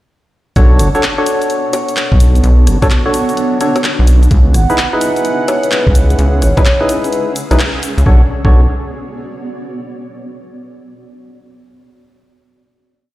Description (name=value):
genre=UK garage, two-step garage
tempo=128 BPM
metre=4/4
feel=swing 65% on 16ths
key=B dorian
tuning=A4 = 440 Hz
part: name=percussive organ stab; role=stabs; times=0.6-8.6 s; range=D4 to C#5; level=-17 LUFS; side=equal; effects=wide subtle chorus, dub echo
part: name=rubbery square bass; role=bass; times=0.6-8.7 s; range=F#1 to C#2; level=-9 LUFS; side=equal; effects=none
part: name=electronic kick drum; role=drums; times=0.6-8.5 s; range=none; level=-11 LUFS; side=equal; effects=overdrive, studio reverb
part: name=garage drum kit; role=drums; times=0.6-8.0 s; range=bongos, cabasa, handclaps, hi-hat, rim click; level=-20 LUFS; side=left 1 dB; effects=studio reverb
part: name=granular cloud pad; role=texture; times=1.1-9.9 s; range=B3 to E6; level=-23 LUFS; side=right 1 dB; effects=built-in reverb, sidechain pumping
part: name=warm analog pad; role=sustained chords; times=4.3-8.1 s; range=F#5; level=-27 LUFS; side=right 4 dB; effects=chorus, sidechain pumping
part: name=vibraphone with medium mallets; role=melody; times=4.5-7.1 s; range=B4 to F#5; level=-19 LUFS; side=equal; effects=dub echo
room=light reverb, digital ambience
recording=played on a big sound system in a bare room, stone room reverb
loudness=-9 LUFS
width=side -16 dB against mid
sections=0.6-8.1 drop; 8.1-9.9 final chord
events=drop 0.6-8.1; band accent 7.6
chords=0.6 Bm9; 4.3 C#m9; 8.1 Bm9